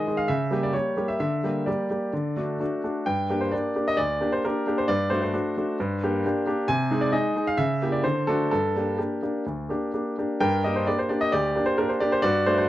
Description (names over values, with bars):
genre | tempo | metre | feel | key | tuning
classical-period piano sonatina | 131 BPM | 4/4 | rubato | G minor | A4 = 440 Hz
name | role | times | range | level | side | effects
clear baby grand piano | solo | 0.0-12.7 s | D2 to Ab5 | -22 LUFS | equal | none
room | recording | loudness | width
little or no reverb | dark, warm production | -23 LUFS | side -14 dB against mid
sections
0.0-10.4 A section; 10.4-12.7 A section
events
none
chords
0.3 C#dim7; 1.2 Gm/D; 2.1 D; 3.1 Gm; 4.9 D7/G; 5.8 Gm; 6.7 Ab/C; 7.6 C#dim7; 8.0 D7; 8.5 Gm